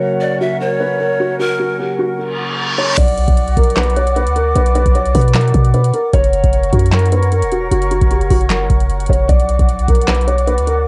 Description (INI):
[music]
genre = hip hop, trap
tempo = 152 BPM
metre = 4/4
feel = half-time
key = B harmonic minor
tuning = A4 = 440 Hz
[part]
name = felt-muted upright piano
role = melody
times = 0.0-10.8 s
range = F#4 to D5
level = -21 LUFS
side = equal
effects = low-pass filter, tape echo, plate reverb
[part]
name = mellow tine electric piano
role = accompaniment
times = 0.0-3.0 s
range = C#3 to A#4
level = -26 LUFS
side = equal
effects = lush chorus, low-pass filter, cassette tape, plate reverb
[part]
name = large flute ensemble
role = sustained chords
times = 0.0-10.9 s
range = C#4 to D6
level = -26 LUFS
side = equal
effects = cassette tape, plate reverb
[part]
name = breathy bright large pan pipes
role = second line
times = 0.2-1.8 s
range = A#4 to E5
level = -23 LUFS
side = equal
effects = cassette tape, tape echo, plate reverb
[part]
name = reverse cymbal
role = sound effects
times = 2.3-3.0 s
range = none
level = -20 LUFS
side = equal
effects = none
[part]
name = warm 808-style bass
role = bass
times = 3.0-10.9 s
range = E1 to B2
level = -17 LUFS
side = equal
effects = none
[part]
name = booming analog drum machine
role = drums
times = 3.0-10.8 s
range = crash cymbal, handclaps, hi-hat, kick drum, snare drum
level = -18 LUFS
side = equal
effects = cassette tape
[sound]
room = light reverb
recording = home recording on cassette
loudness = -14 LUFS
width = mono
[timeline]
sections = 0.0-3.0 A section; 3.0-10.9 B section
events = reverse cymbal 2.3-3.0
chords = 0.0 F#; 3.0 Bm; 6.1 F#; 9.3 Bm